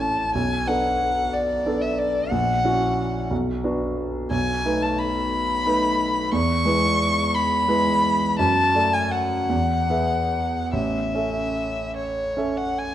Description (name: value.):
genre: classical, romantic duo for violin and grand piano.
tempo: 46-63 BPM (dotted quarters).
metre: 6/8.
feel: rubato.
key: unclear.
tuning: A4 = 440 Hz.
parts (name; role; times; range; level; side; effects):
warm violin; melody; 0.0-12.9 s; C#5 to C#6; -22 LUFS; left 2 dB; none.
clear concert grand piano; accompaniment; 0.0-12.9 s; A1 to E5; -23 LUFS; right 1 dB; none.
room: moderate scoring stage reverb, RT60 1.5 s.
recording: dark, warm production.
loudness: -20 LUFS.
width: side -11 dB against mid.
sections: 0.0-12.9 A section.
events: none.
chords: 0.3 Bm7; 2.3 F#7/A#; 3.3 Bm; 4.3 B7; 6.3 E; 8.4 D/F#; 9.5 E; 10.7 A.